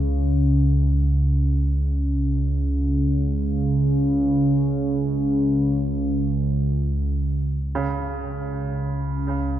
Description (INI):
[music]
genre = dark ambient drone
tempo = free time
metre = none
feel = none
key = unclear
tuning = A4 = 443 Hz
[part]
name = analog drone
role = drone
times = 0.0-9.6 s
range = C#2 to C#3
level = -20 LUFS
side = equal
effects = chorus
[part]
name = bright baby grand piano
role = arpeggios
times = 7.8-9.6 s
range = C#3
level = -27 LUFS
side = right 4 dB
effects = diffuse ambient delay
[sound]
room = wet cathedral reverb, RT60 5.5 s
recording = none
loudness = -20 LUFS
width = side -12 dB against mid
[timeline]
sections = 0.0-7.6 A section; 7.6-9.6 B section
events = none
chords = none